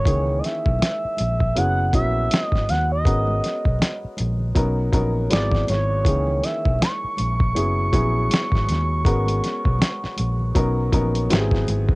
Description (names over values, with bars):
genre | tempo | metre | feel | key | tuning
R&B, neo-soul | 80 BPM | 4/4 | swing 59% on 16ths | C# dorian | A4 = 440 Hz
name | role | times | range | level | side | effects
expressive synth lead | melody | 0.0-11.3 s | C#5 to C#6 | -25 LUFS | right 1 dB | chorus, cassette tape
warm upright piano | accompaniment | 0.0-12.0 s | D#3 to A#4 | -26 LUFS | left 1 dB | cassette tape
vintage muted fingered electric bass | bass | 0.0-12.0 s | F#1 to D#2 | -22 LUFS | equal | none
congas | percussion | 0.0-11.9 s | none | -38 LUFS | right 1 dB | none
dusty soul sampler-style drum kit | drums | 0.1-12.0 s | hi-hat, kick drum, snare drum | -21 LUFS | equal | cassette tape
room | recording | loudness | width
little or no reverb | home recording on cassette | -18 LUFS | side -24 dB against mid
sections
0.0-12.0 A section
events
none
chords
0.0 C#m69; 1.5 F#9sus4; 3.0 G#m11; 4.5 Bmaj9; 5.3 G#7alt; 6.0 C#m69; 7.5 F#9sus4; 9.0 G#m11; 10.5 Bmaj9; 11.3 G#7alt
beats
| 0.05 0.80 1.55 2.30 | 3.05 3.80 4.55 5.30 | 6.05 6.80 7.55 8.30 | 9.05 9.80 10.55 11.30